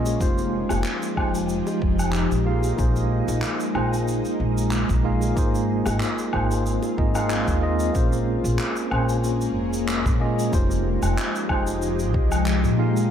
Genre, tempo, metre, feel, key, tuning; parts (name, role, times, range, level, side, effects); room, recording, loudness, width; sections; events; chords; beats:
sunset chillout; 93 BPM; 4/4; swing 53% on 16ths; A4 = 440 Hz
tine electric piano; accompaniment; 0.0-13.1 s; Ab3 to F5; -26 LUFS; equal; fast stereo tremolo, auto-pan, ping-pong delay
ethereal airy pad; sustained chords; 0.0-13.1 s; F3 to G4; -27 LUFS; equal; ensemble chorus, built-in reverb, phaser
upright bass; bass; 0.0-13.1 s; F1 to Bb2; -24 LUFS; equal
cabasa, woodblock and handclaps; drums; 0.1-13.1 s; -30 LUFS; equal
bongos; percussion; 0.1-6.9 s; -36 LUFS; left 4 dB
electronic kick drum; drums; 0.2-12.3 s; -24 LUFS; equal
moderate plate reverb, RT60 1.7 s, small room ambience; dreamy mix soaked in reverb; -20 LUFS; side -9 dB against mid
0.0-7.9 A section; 7.9-13.1 B section
0.2 Fm9; 2.5 Bb9sus4; 5.4 Ab69; 7.9 Bbm9; 10.5 Fm9
| 0.21 0.85 1.50 2.14 | 2.79 3.43 4.08 4.72 | 5.37 6.01 6.66 7.30 | 7.95 8.59 9.24 9.88 | 10.53 11.17 11.82 12.46